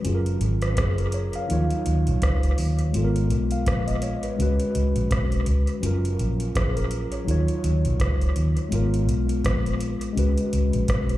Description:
lovers rock reggae; 83 BPM; 4/4; swing 58% on 16ths; G# dorian; A4 = 440 Hz
mellow tine electric piano; accompaniment; 0.0-11.2 s; E#3 to E#5; -27 LUFS; left 2 dB; slow stereo tremolo, dub echo, slapback echo
booming analog drum machine; drums; 0.0-11.2 s; hi-hat, kick drum, rim click; -28 LUFS; equal; dub echo
vintage muted fingered electric bass; bass; 0.1-11.2 s; F#1 to D#2; -23 LUFS; equal
little or no reverb; live gig heard through the venue's PA, club reverb; -21 LUFS; side -15 dB against mid
0.0-11.2 A section
0.1 F#maj7; 1.5 D#m9; 2.9 G#m69; 4.4 C#7sus4; 5.8 F#maj7; 7.3 D#m9; 8.7 G#m69; 10.2 C#7sus4
| 0.06 0.78 1.50 2.22 | 2.94 3.67 4.39 5.11 | 5.83 6.56 7.28 8.00 | 8.72 9.45 10.17 10.89

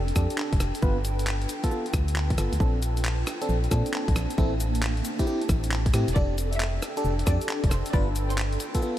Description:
UK garage, two-step garage; 135 BPM; 4/4; swing 66% on 16ths; F major; A4 = 438 Hz
FM electric piano; stabs; 0.0-9.0 s; B3 to B4; -31 LUFS; equal; chorus, phaser, low-pass filter, ping-pong delay
organ-like FM bass; bass; 0.0-8.6 s; E1 to Bb2; -26 LUFS; equal
granular cloud pad; texture; 0.0-9.0 s; C4 to A5; -35 LUFS; equal; built-in reverb, sidechain pumping
breakbeat sampler-style drum kit; drums; 0.1-8.9 s; handclaps, hi-hat, rim click, shaker; -33 LUFS; equal
electronic kick drum; drums; 0.2-8.8 s; -25 LUFS; equal
clear studio violin section; melody; 6.2-8.4 s; C5 to E5; -36 LUFS; left 1 dB; ping-pong delay
light reverb, digital ambience; vinyl crackle; -23 LUFS; side -13 dB against mid
0.0-9.0 A section
filter sweep on FM electric piano 0.0-9.0
0.0 F69; 0.8 G7; 2.6 Bbmaj7; 4.4 Am7; 6.2 F69; 7.9 G7
0.38 | 0.82 1.27 1.71 2.16 | 2.60 3.05 3.49 3.94 | 4.38 4.82 5.27 5.71 | 6.16 6.60 7.05 7.49 | 7.93 8.38 8.82

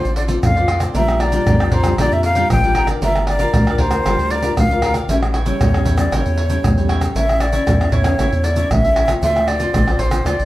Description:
samba and choro; 116 BPM; 4/4; straight; A4 = 441 Hz
breathy jazz flute; melody; 0.0-10.4 s; C5 to G5; -20 LUFS; equal
cavaquinho; accompaniment; 0.0-10.4 s; D4 to G5; -27 LUFS; right 2 dB
nylon-string guitar; accompaniment; 0.0-10.4 s; A2 to Bb4; -24 LUFS; left 3 dB
round analog bass; bass; 0.0-10.4 s; G1 to F2; -19 LUFS; equal
egg shaker, pandeiro, surdo and tamborim; percussion; 0.1-10.4 s; -19 LUFS; right 1 dB
wet studio reverb, RT60 0.6 s; heard from further back in the room; -14 LUFS; side -16 dB against mid
0.0-10.4 A section
0.0 Dm7; 1.0 Bb6; 3.0 Gm7; 5.1 A7; 7.2 A; 9.2 Dm7
0.43 | 0.95 1.47 1.99 2.50 | 3.02 3.54 4.05 4.57 | 5.09 5.61 6.12 6.64 | 7.16 7.67 8.19 8.71 | 9.22 9.74 10.26

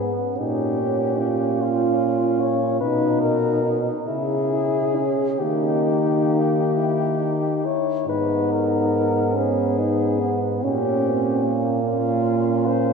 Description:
classical, lyrical piece for horn quartet; 44-50 BPM (dotted quarters); 6/8; rubato; A4 = 436 Hz
clear French horn; melody; 0.0-12.9 s; E#4 to Db5; -24 LUFS; left 4 dB
dark French horn; second line; 0.0-12.9 s; A#3 to E#4; -25 LUFS; right 6 dB
mellow French horn; accompaniment; 0.0-12.9 s; B3 to E4; -25 LUFS; left 2 dB
mellow French horn; bass; 0.0-12.9 s; G#2 to D#3; -26 LUFS; right 2 dB
wet cathedral reverb, RT60 5.1 s; minimal, uncompressed stereo recording; -19 LUFS; side -5 dB against mid
0.0-12.9 A section
0.4 Gdim/Bb; 2.8 Bmaj7; 4.1 C#m; 5.4 D#; 8.1 G#m; 10.6 Gdim/Bb
| 0.36 1.59 | 2.81 4.07 | 5.39 6.74 | 8.08 9.36 | 10.63 11.83

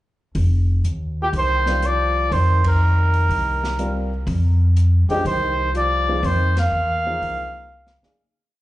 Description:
modal jazz; 122 BPM; 4/4; swing 68% on 8ths; F dorian; A4 = 440 Hz
upright bass; bass; 0.3-8.1 s; F1 to F2; -19 LUFS; equal
swinging big-band drum kit; drums; 0.3-8.2 s; hi-hat, kick drum, ride cymbal, snare drum; -33 LUFS; equal
mellow trumpet; melody; 1.2-8.0 s; G4 to F5; -21 LUFS; right 1 dB; slapback echo
warm trombone; second line; 1.2-8.0 s; Bb2 to Bb3; -32 LUFS; left 1 dB; slapback echo
dark baby grand piano; accompaniment; 1.7-8.2 s; F3 to F5; -28 LUFS; left 1 dB; slapback echo
small room ambience; live gig heard through the venue's PA, club ambience, nothing above 10.5 kHz; -17 LUFS; side -16 dB against mid
0.4-8.2 A section
band accent 2.6, 6.5; fade-out 6.2-8.2; drum fill 7.7-8.2
0.4 F7sus4
| 0.35 0.84 1.33 1.82 | 2.31 2.80 3.29 3.79 | 4.28 4.77 5.26 5.75 | 6.24 6.73 7.22 7.71

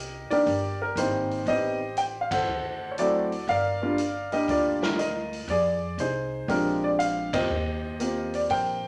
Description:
jazz piano trio; 120 BPM; 4/4; swing 68% on 8ths; Eb major; A4 = 441 Hz
warm grand piano; melody; 0.0-8.9 s; Eb3 to G5; -27 LUFS; equal
upright bass; bass; 0.0-8.9 s; G1 to F2; -38 LUFS; equal
swinging big-band drum kit; drums; 0.3-8.7 s; hi-hat, kick drum, ride cymbal, snare drum; -39 LUFS; equal
wet studio reverb, RT60 0.6 s; -27 LUFS; mono
0.0-8.9 A section
band accent 2.2, 7.2
0.0 Cm9; 1.5 Am7b5; 2.5 D7; 3.5 Gm7; 5.5 Fm7; 6.5 Bb13; 7.5 Eb69
0.47 0.97 | 1.47 1.97 2.48 2.98 | 3.48 3.98 4.48 4.99 | 5.49 5.99 6.49 7.00 | 7.50 8.00 8.50

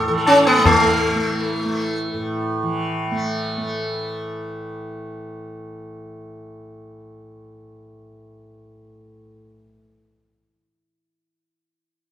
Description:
indian classical, Hindustani; 156 BPM; 4/4; straight; A4 = 440 Hz
sitar; melody; 0.0-2.2 s; A3 to A4; -17 LUFS; equal
tanpura; drone; 0.0-9.8 s; A2 to A3; -26 LUFS; equal
tabla; percussion; 0.3-0.8 s; -20 LUFS; left 1 dB
wet large studio reverb, RT60 0.9 s; band playing live in one room; -17 LUFS; side -11 dB against mid
0.7-3.7 A section
0.27 | 0.65 1.04 1.42 1.81 | 2.19 2.57 2.96 3.33

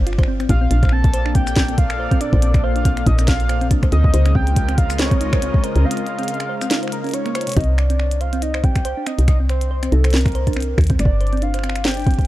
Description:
IDM; 140 BPM; 4/4; swing 56% on 16ths; C dorian; A4 = 441 Hz
woody FM bass; bass; 0.0-12.3 s; G1 to Eb2; -18 LUFS; equal
thumb-piano-like synth pluck; arpeggios; 0.1-12.1 s; C3 to C5; -26 LUFS; right 1 dB; chorus, vintage 12-bit sampler grit, dub echo
glitchy drum kit; drums; 0.1-12.3 s; cabasa, finger snaps, hi-hat, snare drum; -25 LUFS; equal; overdrive
electronic kick drum; drums; 0.2-12.3 s; -16 LUFS; equal; overdrive
warbly nostalgic lead; melody; 0.5-12.3 s; A4 to A5; -26 LUFS; equal; chorus, dub echo
warm analog pad; sustained chords; 0.7-7.6 s; Bb2 to Eb5; -28 LUFS; left 2 dB; chorus, sidechain pumping
little or no reverb; dark, warm production; -15 LUFS; side -16 dB against mid
0.0-7.6 A section; 7.6-12.3 B section
break 5.9-7.6; drum fill 7.4
0.0 Gm7; 0.7 Bbmaj9; 4.1 Db6; 7.6 Cm9; 11.0 G7(no3)
0.28 | 0.71 1.14 1.57 1.99 | 2.42 2.85 3.28 3.71 | 4.14 4.57 4.99 5.42 | 5.85 6.28 6.71 7.14 | 7.57 7.99 8.42 8.85 | 9.28 9.71 10.14 10.57 | 10.99 11.42 11.85

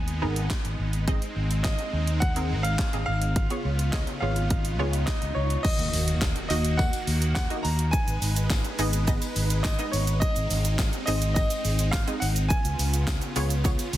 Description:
dance-pop; 105 BPM; 4/4; straight; A4 = 440 Hz
clear baby grand piano; melody; 0.0-14.0 s; Db5 to Bb5; -33 LUFS; equal; dub echo
wide unison pluck; accompaniment; 0.0-14.0 s; Bb3 to Gb5; -32 LUFS; right 1 dB; analog chorus, sidechain pumping
supersaw chords; sustained chords; 0.0-14.0 s; Db3 to Cb5; -34 LUFS; equal; sidechain pumping
fingered electric bass; bass; 0.0-14.0 s; Ab1 to Eb2; -26 LUFS; equal; sidechain pumping
house drum kit; drums; 0.1-14.0 s; crash cymbal, handclaps, hi-hat, kick drum, shaker, snare drum; -28 LUFS; equal
swell and impact; sound effects; 4.2-7.9 s; -38 LUFS; equal
tambourine; percussion; 5.9-14.0 s; -43 LUFS; left 9 dB
light reverb, digital ambience; dense, heavily limited modern master; -23 LUFS; side -14 dB against mid
0.0-5.6 A section; 5.6-14.0 B section
swell 4.2-5.6; impact 5.6-7.9
0.0 Abm; 1.1 Ab; 3.4 Db7; 5.6 Ebm; 7.9 Abm; 10.2 Ab; 12.5 Db7
0.50 | 1.07 1.65 2.22 2.79 | 3.36 3.93 4.50 5.08 | 5.65 6.22 6.79 7.36 | 7.93 8.50 9.07 9.65 | 10.22 10.79 11.36 11.93 | 12.50 13.07 13.65

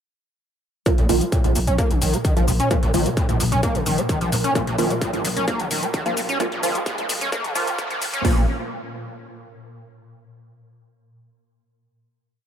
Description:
driving peak-time techno; 130 BPM; 4/4; straight; Bb harmonic minor; A4 = 440 Hz
screaming distorted acid line; riff; 0.9-8.5 s; A2 to Db4; -24 LUFS; equal; distortion, analog chorus, sidechain pumping, analog delay
rave stab; stabs; 0.9-8.4 s; F3 to F4; -27 LUFS; right 2 dB; chorus, built-in reverb, sidechain pumping, analog delay
swarming drone; drone; 2.2-8.3 s; Bb2; -31 LUFS; equal; built-in reverb, sidechain pumping
electronic hi-hat and shaker; drums; 0.9-8.2 s; -29 LUFS; left 2 dB; high-pass filter on hats, high-pass filter on perc
techno drum kit; drums; 0.9-8.4 s; hi-hat, kick drum; -23 LUFS; equal; distortion
riser; sound effects; 3.6-8.2 s; -34 LUFS; right 2 dB
growling 808-style bass; bass; 1.0-8.5 s; Bb1; -26 LUFS; equal; sidechain pumping, low-pass filter
moderate spring reverb, RT60 2.6 s; echo-heavy mix, high-pass filter; -19 LUFS; side -8 dB against mid
0.9-8.2 build; 8.2-10.1 final chord
build-up 0.9-8.2; filter sweep on acid bass 0.9-8.2; filter sweep on synth stab 0.9-8.2; filter sweep 0.9-8.2
0.9 Bb5
| 0.86 1.32 1.79 2.25 | 2.71 3.17 3.63 4.09 | 4.55 5.02 5.48 5.94 | 6.40 6.86 7.32 7.79 | 8.25

